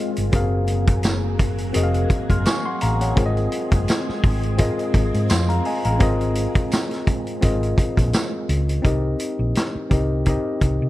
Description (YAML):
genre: lush 1970s-style soul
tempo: 85 BPM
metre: 4/4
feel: swing 54% on 16ths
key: Ab mixolydian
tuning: A4 = 441 Hz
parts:
  - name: tine electric piano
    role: accompaniment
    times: 0.0-10.9 s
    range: C4 to F6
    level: -24 LUFS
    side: left 2 dB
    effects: none
  - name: soft string machine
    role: sustained chords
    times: 0.0-8.8 s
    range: Gb3 to Ab4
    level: -31 LUFS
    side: equal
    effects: phaser, ensemble chorus
  - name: hollow-body short-scale fingered electric bass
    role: bass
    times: 0.2-10.9 s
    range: F1 to C3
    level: -22 LUFS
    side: equal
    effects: none
  - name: vintage drum kit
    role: drums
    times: 0.2-10.8 s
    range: hi-hat, kick drum, snare drum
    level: -21 LUFS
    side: equal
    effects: none
  - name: tambourine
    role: percussion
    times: 1.0-8.3 s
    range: none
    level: -34 LUFS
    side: right 7 dB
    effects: none
room: studio reverb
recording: dark, warm production, lossy compression artefacts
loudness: -18 LUFS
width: side -16 dB against mid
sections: 0.0-8.8 A section; 8.8-10.9 B section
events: none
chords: 0.3 Gbmaj9#11; 3.2 Ab69; 8.8 Cm7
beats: | 0.34 1.05 1.75 2.46 | 3.17 3.88 4.59 5.30 | 6.01 6.72 7.43 8.13 | 8.85 9.56 10.27